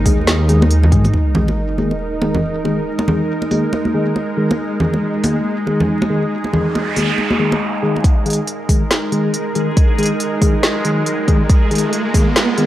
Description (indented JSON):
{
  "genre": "deep dubstep",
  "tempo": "139 BPM",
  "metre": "4/4",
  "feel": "swing 60% on 16ths, half-time",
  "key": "unclear",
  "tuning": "A4 = 438 Hz",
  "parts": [
    { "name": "bowed-like drone", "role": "sustained chords", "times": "0.0-12.7 s", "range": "G#3 to A#4", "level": "-21 LUFS", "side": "right 1 dB", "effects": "built-in reverb, vintage 12-bit sampler grit" },
    { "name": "dark detuned saw bass", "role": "bass", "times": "0.0-1.1 s", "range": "D#2 to G#2", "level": "-13 LUFS", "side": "equal", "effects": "none" },
    { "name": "mellow tine electric piano", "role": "stabs", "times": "0.1-12.7 s", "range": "D#3 to G#4", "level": "-20 LUFS", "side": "left 2 dB", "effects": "medium stereo tremolo, low-pass filter, dub echo" },
    { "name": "deep house drum kit", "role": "drums", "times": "0.1-12.7 s", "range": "hi-hat, snare drum", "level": "-20 LUFS", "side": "equal", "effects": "low-pass filter on hats, low-pass filter on snare" },
    { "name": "electronic kick drum", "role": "drums", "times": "0.1-1.0, 8.0-12.2 s", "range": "none", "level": "-14 LUFS", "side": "equal", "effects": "none" },
    { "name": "congas", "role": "percussion", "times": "0.3-8.0 s", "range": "none", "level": "-20 LUFS", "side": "right 1 dB", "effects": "dub echo" },
    { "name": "sub drop, noise sweep and riser", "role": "sound effects", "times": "1.1-2.9, 6.6-12.7 s", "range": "none", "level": "-23 LUFS", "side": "right 1 dB", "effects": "none" },
    { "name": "backwards swelling texture", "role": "texture", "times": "9.1-12.7 s", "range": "G#3 to G#4", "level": "-26 LUFS", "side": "equal", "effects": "built-in reverb" }
  ],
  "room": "light reverb",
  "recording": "dry, gritty hardware recording, vinyl crackle",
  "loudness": "-14 LUFS",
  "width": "side -13 dB against mid",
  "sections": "0.0-1.1 A section; 1.1-8.0 B section; 8.0-12.7 C section",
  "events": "impact 1.1-2.9; filter sweep on drum 1.1-8.0; noise sweep 6.6-8.0; build-up 8.0-12.7; riser 8.0-12.7; filter sweep on tine electric piano 8.0-12.7",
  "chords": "0.0 G#5"
}